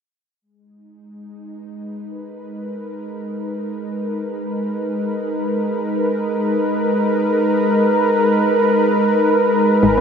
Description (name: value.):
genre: ambient, sequencer-driven space music.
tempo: free time.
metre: none.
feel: none.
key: G# minor.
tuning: A4 = 440 Hz.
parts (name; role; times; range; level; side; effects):
lush unison pad; sustained chords; 1.5-10.0 s; G#3 to B4; -17 LUFS; equal; chorus.
concert harp; arpeggios; 9.8-10.0 s; G#4 to D#5; -32 LUFS; left 5 dB; none.
analog pluck; riff; 9.8-10.0 s; G#2 to B3; -15 LUFS; left 1 dB; chorus.
warm sub bass; bass; 9.8-10.0 s; G#1; -27 LUFS; equal; tube saturation.
room: wet lush hall reverb, RT60 2.7 s.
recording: dreamy mix soaked in reverb.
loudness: -16 LUFS.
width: side -6 dB against mid.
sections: 0.4-9.8 A section.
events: fade-in on analog synth pad 0.4-9.8.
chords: 0.4 G#m.